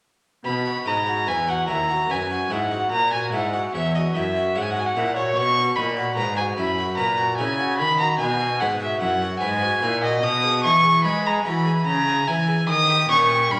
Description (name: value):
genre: classical, baroque-style sonata movement with continuo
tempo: 74 BPM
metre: 3/4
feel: straight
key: B major, G# minor from 10.2 s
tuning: A4 = 440 Hz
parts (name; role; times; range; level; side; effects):
- harpsichord; accompaniment; 0.4-13.6 s; D#2 to C#5; -30 LUFS; equal; none
- warm cello; bass; 0.4-13.6 s; D#2 to G#3; -28 LUFS; equal; none
- warm violin; melody; 0.5-13.6 s; C#5 to D#6; -23 LUFS; equal; none
room: wet recital hall reverb, RT60 1.4 s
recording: none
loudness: -22 LUFS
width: mono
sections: 0.5-13.6 A section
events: none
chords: 0.5 B; 2.9 F#7; 5.4 B; 10.2 G#m/B; 11.9 A#m7b5/C#; 12.7 D#7